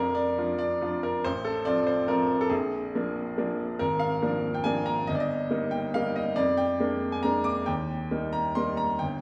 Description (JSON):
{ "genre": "classical, piano waltz", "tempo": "139 BPM", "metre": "3/4", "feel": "uneven beats, rubato", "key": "Eb major", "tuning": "A4 = 444 Hz", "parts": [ { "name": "bright baby grand piano", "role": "solo", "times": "0.0-9.2 s", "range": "G1 to D6", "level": "-28 LUFS", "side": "equal", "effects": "none" } ], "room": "wet recital hall reverb, RT60 1.5 s", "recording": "small room ambience", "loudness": "-28 LUFS", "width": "mono", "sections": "0.0-9.2 A section", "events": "none", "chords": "0.0 Bb; 1.2 F/A; 2.5 Bb; 3.8 Bb7/Ab; 5.1 Eb/G; 6.4 Bb7/F; 7.7 Eb", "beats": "0.37 0.81 | 1.24 1.66 2.09 | 2.51 2.94 3.38 | 3.80 4.21 4.65 | 5.08 5.51 5.95 | 6.37 6.80 7.24 | 7.67 8.11 8.56 | 8.99" }